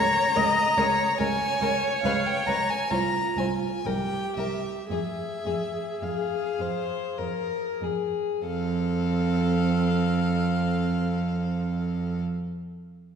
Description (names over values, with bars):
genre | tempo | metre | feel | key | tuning
classical, slow romantic movement for string quartet | 47-73 BPM | 3/4 | rubato | F minor | A4 = 440 Hz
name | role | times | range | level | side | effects
warm violin | second line | 0.0-12.2 s | E5 to Bb5 | -28 LUFS | left 3 dB | none
warm viola | accompaniment | 0.0-12.2 s | C4 to Eb5 | -31 LUFS | right 4 dB | none
warm cello | bass | 0.0-12.2 s | C2 to F2 | -28 LUFS | right 3 dB | none
warm violin | melody | 0.3-12.2 s | Ab4 to C5 | -32 LUFS | left 6 dB | none
room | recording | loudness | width
wet scoring stage reverb, RT60 1.5 s | heard from further back in the room | -24 LUFS | side -7 dB against mid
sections
0.0-8.4 A section; 8.4-12.2 B section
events
slowing down 0.8-8.4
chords
0.0 Bbm/Db; 2.0 Db(#11); 2.9 Fm/C; 3.9 C; 4.9 Fm; 8.4 F